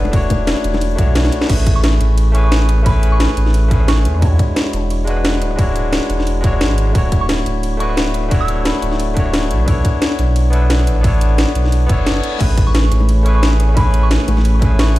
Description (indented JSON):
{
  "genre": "liquid drum and bass",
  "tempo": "176 BPM",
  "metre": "4/4",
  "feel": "swing 53% on 16ths",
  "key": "A major",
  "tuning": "A4 = 440 Hz",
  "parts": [
    { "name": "barky tine electric piano", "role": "accompaniment", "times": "0.0-15.0 s", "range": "G#3 to C#5", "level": "-20 LUFS", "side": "left 1 dB", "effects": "digital delay" },
    { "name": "warm sub bass", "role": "bass", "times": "0.0-15.0 s", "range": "D1 to E2", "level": "-15 LUFS", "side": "equal", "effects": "none" },
    { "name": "drum and bass drum kit", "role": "drums", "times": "0.1-15.0 s", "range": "crash cymbal, hi-hat, ride cymbal, rim click, shaker, snare drum", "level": "-21 LUFS", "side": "equal", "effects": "overdrive, small room ambience" },
    { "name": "electronic kick drum", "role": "drums", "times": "0.1-14.7 s", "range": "none", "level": "-15 LUFS", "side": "equal", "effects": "overdrive, small room ambience" },
    { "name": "bongos", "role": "percussion", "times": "0.1-0.8, 12.4-14.4 s", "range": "none", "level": "-27 LUFS", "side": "left 5 dB", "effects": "none" },
    { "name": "soft synth bell", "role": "melody", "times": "1.8-4.3, 7.2-8.9, 12.7-15.0 s", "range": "B5 to E6", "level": "-26 LUFS", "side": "equal", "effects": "chorus, phaser, ping-pong delay" },
    { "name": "reverse cymbal", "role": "sound effects", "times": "11.9-12.4 s", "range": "none", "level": "-30 LUFS", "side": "left 7 dB", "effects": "none" },
    { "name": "airy breathy pad", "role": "sustained chords", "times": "12.7-15.0 s", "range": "A3 to B5", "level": "-26 LUFS", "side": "equal", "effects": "chorus, sidechain pumping" }
  ],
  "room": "digital ambience",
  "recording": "played on a big sound system in a bare room, large studio reverb",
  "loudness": "-12 LUFS",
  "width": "side -16 dB against mid",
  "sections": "0.0-1.5 A section; 1.5-15.0 A section",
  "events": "drop 0.0-1.5, 1.5-15.0; drum fill 1.2; reverse cymbal 11.9-12.4",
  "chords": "0.1 E13sus4; 1.5 Amaj9; 4.2 E13; 7.0 Dmaj9; 9.7 Bm11; 12.4 Amaj9",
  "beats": "| 0.13 0.47 0.81 1.16 | 1.50 1.84 2.18 2.52 | 2.86 3.20 3.54 3.88 | 4.22 4.56 4.91 5.25 | 5.59 5.93 6.27 6.61 | 6.95 7.29 7.63 7.97 | 8.31 8.65 9.00 9.34 | 9.68 10.02 10.36 10.70 | 11.04 11.38 11.72 12.06 | 12.40 12.75 13.09 13.43 | 13.77 14.11 14.45 14.79"
}